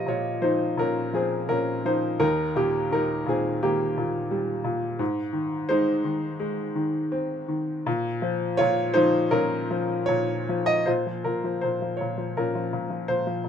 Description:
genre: classical, lyrical solo piano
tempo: 76-88 BPM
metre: 4/4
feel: rubato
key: Bb dorian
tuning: A4 = 440 Hz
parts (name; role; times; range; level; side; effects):
- clear upright piano; solo; 0.0-13.5 s; Eb2 to Eb5; -23 LUFS; left 1 dB; none
room: light reverb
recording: close, detailed microphones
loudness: -23 LUFS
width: side -8 dB against mid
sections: 0.0-10.9 A section; 10.9-13.5 B section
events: none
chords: 0.0 Bbm; 2.2 Eb; 5.0 Ab; 7.9 Bbm

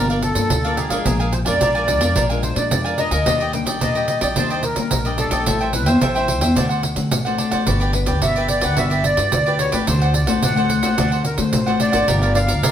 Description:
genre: samba and choro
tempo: 109 BPM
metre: 4/4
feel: straight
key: G minor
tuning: A4 = 440 Hz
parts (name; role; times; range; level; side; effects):
- accordion; melody; 0.0-12.7 s; Ab4 to G5; -22 LUFS; equal; light tremolo tuning
- cavaquinho; accompaniment; 0.0-12.7 s; D4 to Ab5; -24 LUFS; right 2 dB; none
- nylon-string guitar; accompaniment; 0.0-12.7 s; F2 to B4; -24 LUFS; left 5 dB; none
- upright bass; bass; 0.0-12.7 s; G1 to Eb3; -22 LUFS; equal; none
- pandeiro; percussion; 0.1-12.7 s; none; -23 LUFS; right 2 dB; none
room: wet stone room reverb, RT60 1.1 s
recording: band playing live in one room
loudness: -16 LUFS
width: side -10 dB against mid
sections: 0.0-12.7 A section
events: none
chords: 0.0 Gm7; 1.1 Bb7; 3.3 Ebmaj7; 5.5 Am7; 6.6 D7; 7.7 Gmaj7; 9.9 D7; 12.1 Gm7

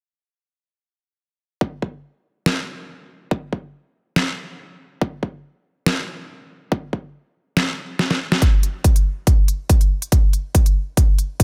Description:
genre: heavy wobble dubstep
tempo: 141 BPM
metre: 4/4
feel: swing 53% on 16ths, half-time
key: none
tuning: none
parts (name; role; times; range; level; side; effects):
- electronic kick drum; drums; 1.6-11.4 s; none; -18 LUFS; equal; overdrive, high-pass filter on kick, high-pass filter on room
- dubstep drum kit; drums; 2.5-11.4 s; hi-hat, snare drum; -23 LUFS; equal; none
room: digital ambience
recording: none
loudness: -20 LUFS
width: mono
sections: 1.6-8.4 A section; 8.4-11.4 B section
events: drum fill 8.0-8.4; build-up 8.4-11.4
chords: none

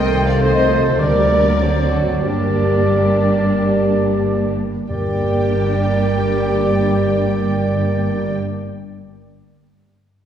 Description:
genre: classical, dramatic, fast romantic movement for symphony orchestra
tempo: 86-104 BPM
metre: 4/4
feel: rubato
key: G minor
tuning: A4 = 441 Hz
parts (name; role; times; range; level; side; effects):
- warm symphonic violin section; melody; 0.0-8.4 s; F#4 to G5; -30 LUFS; left 3 dB; none
- large flute ensemble; second line; 0.0-8.4 s; F#4 to G5; -28 LUFS; left 1 dB; none
- mellow oboe; second line; 0.0-8.4 s; C5 to D5; -26 LUFS; equal; none
- warm clarinet; second line; 0.0-8.4 s; A4 to C5; -28 LUFS; right 1 dB; none
- warm symphonic violin section; second line; 0.0-8.4 s; D4 to G5; -30 LUFS; left 3 dB; none
- mellow bassoon; accompaniment; 0.0-8.4 s; Eb3 to G3; -25 LUFS; left 1 dB; none
- warm symphonic viola section; accompaniment; 0.0-8.4 s; A3 to A4; -25 LUFS; right 3 dB; none
- mellow French horn section; sustained chords; 0.0-8.4 s; Eb3 to C5; -22 LUFS; left 2 dB; none
- clear trumpet section; stabs; 0.0-8.4 s; C5 to D5; -24 LUFS; right 4 dB; none
- dark studio double bass section; bass; 0.0-8.4 s; G1 to D2; -23 LUFS; right 1 dB; none
- warm studio cello section; bass; 0.0-8.4 s; G2 to D3; -22 LUFS; right 2 dB; none
- timpani; percussion; 1.0-8.4 s; G2 to D3; -29 LUFS; equal; none
room: wet concert hall reverb, RT60 1.9 s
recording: heard from further back in the room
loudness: -14 LUFS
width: side -9 dB against mid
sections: 0.0-4.9 A section; 4.9-7.6 B section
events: slowing down 0.0-4.9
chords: 0.0 Adim/C; 1.0 Gm/D; 1.6 D7; 2.2 Gm

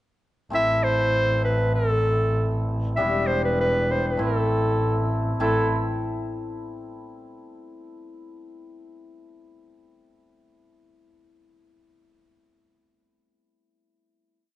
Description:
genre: klezmer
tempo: 98 BPM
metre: 2/4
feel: straight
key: A minor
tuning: A4 = 440 Hz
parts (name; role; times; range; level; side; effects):
- mellow clarinet; melody; 0.5-5.7 s; A4 to E5; -24 LUFS; equal; none
- hammered dulcimer; accompaniment; 0.5-5.7 s; G3 to E4; -29 LUFS; left 1 dB; none
- rich double bass; bass; 0.5-5.7 s; E1 to A1; -25 LUFS; equal; none
room: moderate recital hall reverb, RT60 1.8 s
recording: nothing above 10.6 kHz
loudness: -21 LUFS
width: side -15 dB against mid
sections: 0.5-5.4 A section; 5.4-6.6 final chord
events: none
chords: 0.5 Am; 3.0 Em; 4.2 Am

